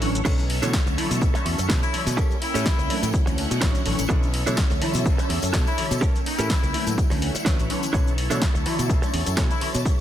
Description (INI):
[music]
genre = filtered disco house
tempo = 125 BPM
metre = 4/4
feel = swing 55% on 16ths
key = B minor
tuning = A4 = 439 Hz
[part]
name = funky polysynth comp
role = accompaniment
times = 0.0-10.0 s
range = Bb2 to E4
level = -29 LUFS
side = equal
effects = chorus, phaser, sidechain pumping
[part]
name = phased string machine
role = sustained chords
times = 0.0-10.0 s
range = Bb3 to Bb5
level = -31 LUFS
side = equal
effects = ensemble chorus, phaser, vintage 12-bit sampler grit, sidechain pumping
[part]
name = modern bright fingered electric bass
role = bass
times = 0.0-9.8 s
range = A1 to B2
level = -27 LUFS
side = equal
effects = sidechain pumping
[part]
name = punchy analog drum machine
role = drums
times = 0.0-10.0 s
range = crash cymbal, hi-hat, shaker, snare drum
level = -30 LUFS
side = left 1 dB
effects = sidechain pumping on perc, sidechain pumping on hats, sidechain pumping on cymbals
[part]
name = direct-recorded clean electric guitar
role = riff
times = 0.2-9.6 s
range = C#4 to C#5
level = -31 LUFS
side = right 5 dB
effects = vintage 12-bit sampler grit, sidechain pumping
[part]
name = tambourine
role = percussion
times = 0.2-10.0 s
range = none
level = -38 LUFS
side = left 8 dB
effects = sidechain pumping on perc
[part]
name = electronic kick drum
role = drums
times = 0.3-10.0 s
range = none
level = -23 LUFS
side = equal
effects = none
[part]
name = bright horn section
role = melody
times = 1.8-9.7 s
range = E4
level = -31 LUFS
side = left 3 dB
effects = sidechain pumping, dub echo
[sound]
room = digital ambience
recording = none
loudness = -20 LUFS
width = side -11 dB against mid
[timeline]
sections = 0.0-10.0 A section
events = none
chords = 0.3 Bm11; 2.2 A7b9; 3.1 Dmaj9; 4.1 Bm11; 6.0 A7b9; 7.0 Dmaj9; 7.9 Bm11